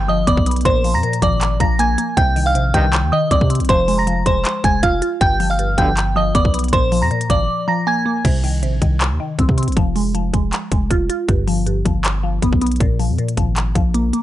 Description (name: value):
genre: hip hop, trap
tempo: 158 BPM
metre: 4/4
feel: half-time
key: C minor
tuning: A4 = 440 Hz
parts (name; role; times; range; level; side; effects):
- delicate synth tine bell; melody; 0.0-8.2 s; C5 to Bb6; -18 LUFS; right 1 dB; chorus, low-pass filter
- glassy wavetable pluck; accompaniment; 0.0-14.2 s; G2 to F4; -21 LUFS; left 1 dB; chorus, low-pass filter
- long sustained 808-style bass; bass; 0.0-14.1 s; F1 to C3; -20 LUFS; equal; none
- trap drum kit; drums; 0.3-14.2 s; crash cymbal, handclaps, hi-hat, kick drum; -20 LUFS; equal; none
- mellow brass ensemble; stabs; 2.7-2.9, 5.8-5.9 s; G2 to Eb3; -24 LUFS; right 2 dB; none
room: digital ambience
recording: dry, gritty hardware recording, nothing above 10.7 kHz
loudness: -15 LUFS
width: side -14 dB against mid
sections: 0.0-8.2 A section; 8.2-14.2 B section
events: break 7.5-8.2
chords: 0.0 G7; 0.7 Bb7; 2.2 Cmadd9; 3.7 Fm; 5.2 G7; 6.7 Bb7; 8.2 Cm; 9.8 Fm; 11.3 G7; 12.8 Bb5